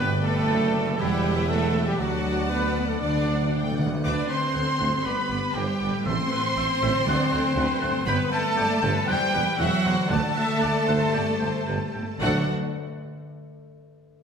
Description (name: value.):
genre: cinematic, heroic adventure film score.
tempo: 118 BPM.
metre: 4/4.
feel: straight.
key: D mixolydian.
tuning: A4 = 445 Hz.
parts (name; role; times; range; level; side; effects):
clear symphonic violin section; melody; 0.0-12.5 s; F#4 to D6; -30 LUFS; equal; none.
clear symphonic violin section; second line; 0.0-12.5 s; F#4 to A5; -34 LUFS; left 2 dB; none.
hollow flute section; second line; 0.0-12.5 s; F#4 to D6; -34 LUFS; left 1 dB; none.
warm clarinet; second line; 0.0-12.4 s; A3 to D5; -37 LUFS; equal; none.
rich symphonic viola section; accompaniment; 0.0-12.5 s; A3 to F#5; -33 LUFS; right 1 dB; none.
mellow French horn section; sustained chords; 0.0-12.5 s; F#3 to D4; -32 LUFS; left 3 dB; none.
concert harp; arpeggios; 0.0-12.5 s; G2 to D6; -33 LUFS; left 5 dB; none.
dark trumpet section; stabs; 0.0-12.4 s; E4 to G5; -32 LUFS; equal; none.
mellow tuba; bass; 0.0-12.4 s; E1 to D2; -31 LUFS; right 3 dB; none.
rich symphonic cello section; bass; 0.0-12.5 s; F#3 to D4; -30 LUFS; right 3 dB; none.
rich symphonic double bass section; bass; 0.0-12.5 s; G1 to G2; -32 LUFS; right 3 dB; none.
timpani; percussion; 3.0-12.5 s; A2 to D3; -32 LUFS; right 2 dB; none.
warm oboe; second line; 4.0-12.4 s; D5 to G5; -35 LUFS; right 2 dB; none.
room: wet scoring stage reverb, RT60 1.8 s.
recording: none.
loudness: -22 LUFS.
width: side -6 dB against mid.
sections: 0.0-4.0 A section; 4.0-12.2 B section; 12.2-14.2 C section.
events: timpani fill 3.0-4.0; slowing down 7.1-12.2.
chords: 0.0 G; 1.0 Emadd9; 2.0 D; 5.1 G; 6.1 Am; 7.1 D; 8.1 G; 9.1 Emadd9; 10.1 D; 11.1 G; 12.2 D.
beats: 0.49 0.99 1.50 | 2.00 2.51 3.02 3.54 | 4.05 4.55 5.05 5.56 | 6.06 6.57 7.07 7.57 | 8.07 8.57 9.08 9.59 | 10.10 10.62 11.14 11.68 | 12.22.